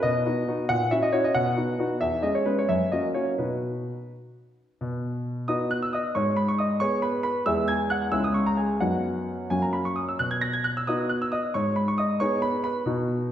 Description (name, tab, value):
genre	classical-period piano sonatina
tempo	83-93 BPM (dotted quarters)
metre	6/8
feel	rubato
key	B major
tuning	A4 = 435 Hz
part	clear grand piano	solo	0.0-13.3 s	C#2 to A#6	-23 LUFS	equal	none
room	wet recital hall reverb, RT60 1.4 s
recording	none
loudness	-23 LUFS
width	side -10 dB against mid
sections	0.0-4.8 A section; 4.8-13.3 B section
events	none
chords	0.0 B; 0.7 F#7/A#; 1.3 B; 2.0 C#m/E; 2.7 F#; 3.4 B; 6.1 G#m; 7.5 E; 8.1 C#m; 8.8 B/F#; 9.5 F#; 10.2 B; 11.5 G#m